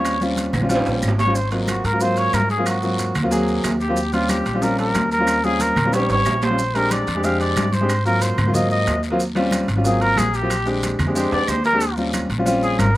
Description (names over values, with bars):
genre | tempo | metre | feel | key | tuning
Afro-Cuban jazz | 184 BPM | 4/4 | straight | Eb mixolydian | A4 = 438 Hz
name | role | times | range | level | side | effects
mellow trumpet | melody | 0.0-13.0 s | Eb4 to F5 | -21 LUFS | equal | slapback echo
warm concert grand piano | accompaniment | 0.0-12.9 s | Gb3 to Ab4 | -22 LUFS | equal | slapback echo
upright bass | bass | 0.0-13.0 s | Ab1 to Ab2 | -23 LUFS | equal | none
claves | percussion | 0.0-13.0 s | none | -34 LUFS | right 3 dB | none
congas | percussion | 0.0-13.0 s | none | -28 LUFS | left 1 dB | none
guiro | percussion | 0.0-13.0 s | none | -35 LUFS | left 5 dB | none
maracas | percussion | 0.1-13.0 s | none | -35 LUFS | right 3 dB | none
timbales | percussion | 0.1-13.0 s | none | -29 LUFS | right 4 dB | slapback echo
room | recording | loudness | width
little or no reverb | recorded outdoors, with no room sound | -17 LUFS | side -16 dB against mid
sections
0.0-11.8 A section; 11.8-13.0 A section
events
trumpet solo 0.0-13.0; drum fill 0.5-1.4, 5.9-6.6, 11.3-11.8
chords
0.0 Eb13; 1.4 Ab13; 4.0 Eb13; 6.6 Bb13; 7.9 Ab13; 9.2 Eb13; 9.8 Ab13; 10.5 Bb13; 11.8 Eb13